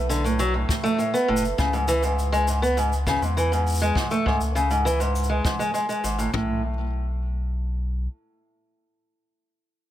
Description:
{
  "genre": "folktronica",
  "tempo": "101 BPM",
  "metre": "4/4",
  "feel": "straight",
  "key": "unclear",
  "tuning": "A4 = 443 Hz",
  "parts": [
    { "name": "warm sub bass", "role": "bass", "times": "0.0-8.1 s", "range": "F#1 to E2", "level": "-25 LUFS", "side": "equal", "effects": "none" },
    { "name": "fingerpicked acoustic archtop guitar", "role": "arpeggios", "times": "0.1-6.6 s", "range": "G#2 to B3", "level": "-23 LUFS", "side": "equal", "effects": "low-pass filter, digital delay" },
    { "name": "shaker", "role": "drums", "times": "0.1-6.3 s", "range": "none", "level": "-36 LUFS", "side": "left 1 dB", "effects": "none" },
    { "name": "jazz brush drum kit", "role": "drums", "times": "0.7-6.5 s", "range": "kick drum, toms", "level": "-28 LUFS", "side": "equal", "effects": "none" }
  ],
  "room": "light reverb, small room ambience",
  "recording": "none",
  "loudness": "-21 LUFS",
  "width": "side -12 dB against mid",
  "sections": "0.0-6.3 A section; 6.3-8.7 B section",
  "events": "none",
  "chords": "0.0 B7(no3); 1.6 C#m; 4.0 Amaj7/C# (rootless); 6.3 N.C."
}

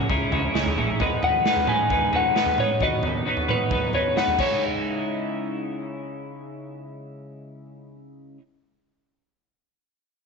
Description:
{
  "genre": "indie rock",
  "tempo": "132 BPM",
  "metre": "4/4",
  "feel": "straight",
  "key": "C# minor",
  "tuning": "A4 = 441 Hz",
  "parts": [
    { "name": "twelve-string electric guitar", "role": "riff", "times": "0.0-8.4 s", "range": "G#2 to B4", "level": "-26 LUFS", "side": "equal", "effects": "double-tracked left and right" },
    { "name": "growling picked electric bass", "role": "bass", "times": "0.1-0.9 s", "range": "A#1 to C#2", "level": "-30 LUFS", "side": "left 1 dB", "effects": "overdrive" },
    { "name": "raw garage drum kit", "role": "drums", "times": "0.1-4.5 s", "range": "crash cymbal, kick drum, snare drum, toms", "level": "-27 LUFS", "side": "right 4 dB", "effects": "none" },
    { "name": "electric guitar through a small old amp", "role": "melody", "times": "1.2-4.6 s", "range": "B4 to G#5", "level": "-24 LUFS", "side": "left 4 dB", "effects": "tape echo" }
  ],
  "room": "moderate echo chamber reverb, RT60 1.8 s, small room ambience",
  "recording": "1960s-style stereo, nothing above 7.8 kHz",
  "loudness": "-21 LUFS",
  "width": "side -4 dB against mid",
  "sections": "0.0-4.6 A section; 4.6-8.3 B section",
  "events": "clean electric guitar solo 0.0-4.6",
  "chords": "0.1 C#madd9; 1.0 G#m; 2.8 B; 4.4 C#madd9"
}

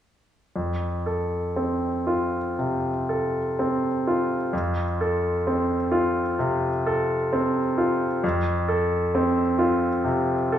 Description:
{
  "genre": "classical",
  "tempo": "58-67 BPM",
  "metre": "4/4",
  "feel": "rubato",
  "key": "F major",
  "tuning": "A4 = 440 Hz",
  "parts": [
    { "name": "bright concert grand piano", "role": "melody", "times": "0.6-10.6 s", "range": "F2 to A4", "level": "-22 LUFS", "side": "equal", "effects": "none" }
  ],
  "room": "wet scoring stage reverb, RT60 1.4 s",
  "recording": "small room ambience",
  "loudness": "-22 LUFS",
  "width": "side -10 dB against mid",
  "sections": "0.5-10.6 A section",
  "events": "none",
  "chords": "0.5 F"
}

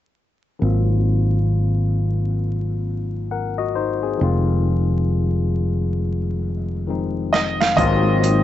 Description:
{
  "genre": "R&B, neo-soul",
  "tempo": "67 BPM",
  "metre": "4/4",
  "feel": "swing 60% on 16ths",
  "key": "unclear",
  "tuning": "A4 = 440 Hz",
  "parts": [
    { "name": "barky tine electric piano", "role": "accompaniment", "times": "0.6-8.4 s", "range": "Eb3 to Gb5", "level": "-24 LUFS", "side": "left 8 dB", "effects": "overdrive, low-pass filter" },
    { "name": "fretless electric bass", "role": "bass", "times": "0.6-8.4 s", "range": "F1 to Ab1", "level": "-20 LUFS", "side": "equal", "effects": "none" },
    { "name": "clear concert grand piano", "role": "melody", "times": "7.3-8.4 s", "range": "Eb5 to F5", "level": "-20 LUFS", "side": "right 1 dB", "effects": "none" },
    { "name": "boom bap sampler-style drum kit", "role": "drums", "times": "7.3-8.4 s", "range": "hi-hat, kick drum, snare drum", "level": "-23 LUFS", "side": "right 5 dB", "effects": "none" },
    { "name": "nylon-string guitar", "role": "second line", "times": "7.8-8.3 s", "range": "Bb3", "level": "-32 LUFS", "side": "right 11 dB", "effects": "none" },
    { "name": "congas", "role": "percussion", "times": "7.8-8.2 s", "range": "none", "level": "-33 LUFS", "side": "right 9 dB", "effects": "none" }
  ],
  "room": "studio reverb",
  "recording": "1960s-style stereo with parts hard left and right, vinyl crackle, nothing above 8.0 kHz",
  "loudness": "-18 LUFS",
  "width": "side -12 dB against mid",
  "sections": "0.6-7.8 A section",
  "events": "filter sweep on tine electric piano 0.6-7.8; drum fill 6.0-7.8",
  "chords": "0.6 Ab13; 4.2 Fm7; 7.8 Ab13"
}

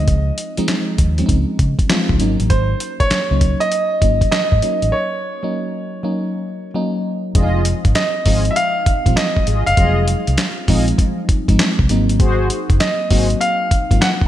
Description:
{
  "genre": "R&B, new jack swing",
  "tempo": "99 BPM",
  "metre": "4/4",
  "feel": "swing 65% on 16ths",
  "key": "unclear",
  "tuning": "A4 = 440 Hz",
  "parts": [
    { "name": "clear baby grand piano", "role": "melody", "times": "0.0-14.1 s", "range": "C5 to Gb5", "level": "-20 LUFS", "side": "right 1 dB", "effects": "none" },
    { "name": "mellow FM electric piano", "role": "accompaniment", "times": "0.0-14.3 s", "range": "F3 to F4", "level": "-22 LUFS", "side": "left 1 dB", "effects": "chorus, phaser" },
    { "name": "vintage muted fingered electric bass", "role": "bass", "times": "0.0-14.0 s", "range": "F1 to Db3", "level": "-18 LUFS", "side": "equal", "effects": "none" },
    { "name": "dusty soul sampler-style drum kit", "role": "drums", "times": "0.1-14.3 s", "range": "handclaps, hi-hat, kick drum, snare drum", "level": "-17 LUFS", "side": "equal", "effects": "gated reverb" },
    { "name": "mellow synth brass", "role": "stabs", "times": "7.3-13.3 s", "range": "F4 to Eb5", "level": "-25 LUFS", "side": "left 2 dB", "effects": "chorus, digital delay" }
  ],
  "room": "moderate lush hall reverb, RT60 2.0 s, digital ambience",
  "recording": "bright 1980s-style digital production",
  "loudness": "-14 LUFS",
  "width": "side -12 dB against mid",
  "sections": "0.0-7.3 A section; 7.3-14.3 B section",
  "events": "break 4.9-7.3",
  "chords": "0.0 Dbmaj9; 2.2 Ab9sus4; 7.3 Fm7; 11.9 Ab7"
}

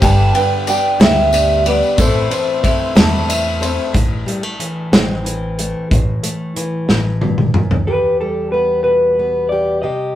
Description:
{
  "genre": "indie folk with a building arrangement",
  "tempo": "61 BPM (dotted quarters)",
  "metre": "6/8",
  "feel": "straight",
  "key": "unclear",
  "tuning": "A4 = 439 Hz",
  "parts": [
    { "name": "electric guitar through a small old amp", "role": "melody", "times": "0.0-3.6, 7.9-10.2 s", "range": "A4 to A5", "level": "-16 LUFS", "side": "equal", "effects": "harmonic tremolo" },
    { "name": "picked steel-string acoustic guitar", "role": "accompaniment", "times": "0.0-3.9 s", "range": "G2 to A4", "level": "-22 LUFS", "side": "left 4 dB", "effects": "none" },
    { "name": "warm grand piano", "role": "accompaniment", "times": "0.0-4.0 s", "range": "G1 to C5", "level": "-28 LUFS", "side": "left 2 dB", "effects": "none" },
    { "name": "warm upright piano", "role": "arpeggios", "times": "0.0-3.9 s", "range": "G4 to A5", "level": "-20 LUFS", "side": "right 1 dB", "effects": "none" },
    { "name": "upright bass", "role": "bass", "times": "0.0-7.7 s", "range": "G1 to E2", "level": "-20 LUFS", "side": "equal", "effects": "none" },
    { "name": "loose indie drum kit", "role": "drums", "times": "0.0-7.9 s", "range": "hi-hat, kick drum, ride cymbal, snare drum, toms", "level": "-16 LUFS", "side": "equal", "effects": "none" },
    { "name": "tambourine", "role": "percussion", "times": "0.0-3.7 s", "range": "none", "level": "-29 LUFS", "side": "left 2 dB", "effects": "none" },
    { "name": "fingerpicked plugged-in steel-string acoustic guitar", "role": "accompaniment", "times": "3.9-10.2 s", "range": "E2 to G4", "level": "-21 LUFS", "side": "left 1 dB", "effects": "none" }
  ],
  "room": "wet studio ambience, RT60 0.5 s",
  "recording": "rough rehearsal-room recording, warm saturation, faint mains hum",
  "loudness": "-13 LUFS",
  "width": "side -12 dB against mid",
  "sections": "0.0-3.9 A section; 3.9-7.9 B section; 7.9-10.2 C section",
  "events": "drum fill 6.9-7.9",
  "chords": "0.0 G; 2.0 Am; 7.9 Em"
}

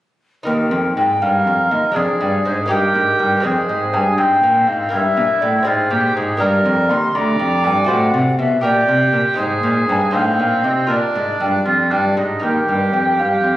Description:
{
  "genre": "classical, baroque-style sonata movement with continuo",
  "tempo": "81 BPM (dotted quarters)",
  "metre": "6/8",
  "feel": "straight",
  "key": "Eb major",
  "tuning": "A4 = 440 Hz",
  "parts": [
    { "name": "lute", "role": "accompaniment", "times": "0.4-13.6 s", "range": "D2 to C5", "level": "-21 LUFS", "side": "left 1 dB", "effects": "none" },
    { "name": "mellow hollow alto recorder", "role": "melody", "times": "0.5-13.6 s", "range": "Bb4 to C6", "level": "-19 LUFS", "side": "left 1 dB", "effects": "none" },
    { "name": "dark cello", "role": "bass", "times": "0.5-13.6 s", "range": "D2 to C3", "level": "-20 LUFS", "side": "equal", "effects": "none" },
    { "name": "warm oboe", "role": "second line", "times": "1.2-13.6 s", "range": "C4 to D5", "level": "-19 LUFS", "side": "right 2 dB", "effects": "none" }
  ],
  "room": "wet recital hall reverb, RT60 1.3 s",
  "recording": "recorded on a phone in the room, studio reverb",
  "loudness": "-14 LUFS",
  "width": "side -15 dB against mid",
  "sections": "0.5-12.4 A section; 12.4-13.6 A section",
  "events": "none",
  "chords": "0.5 Eb; 2.0 Ddim/F; 2.7 Eb/G; 3.4 Fm; 4.9 Edim/G; 5.7 Abmaj13; 6.4 Gm; 7.9 F#dim/A; 8.6 Gm/Bb; 9.4 Ab; 10.1 Adim; 10.9 Bb; 12.4 Eb"
}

